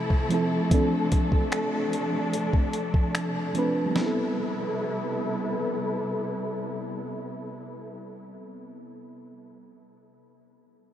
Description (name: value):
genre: contemporary R&B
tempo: 74 BPM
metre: 4/4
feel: straight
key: A minor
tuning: A4 = 436 Hz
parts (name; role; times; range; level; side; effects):
- mellow FM electric piano; accompaniment; 0.0-9.7 s; E3 to B4; -29 LUFS; right 1 dB; chorus, low-pass filter
- warm studio string section; sustained chords; 0.0-8.0 s; C3 to B4; -30 LUFS; left 1 dB; low-pass filter
- dusty soul sampler-style drum kit; drums; 0.1-4.1 s; finger snaps, hi-hat, kick drum, snare drum; -28 LUFS; equal; none
room: wet huge ambient reverb, RT60 7.8 s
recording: dreamy mix soaked in reverb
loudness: -24 LUFS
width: side -11 dB against mid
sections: 0.0-4.0 A section; 4.0-7.2 B section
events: none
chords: 0.0 Fmaj7; 0.7 Dm7; 4.0 Am9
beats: | 0.71 1.52 2.33 3.14 | 3.95 4.76 5.58 6.39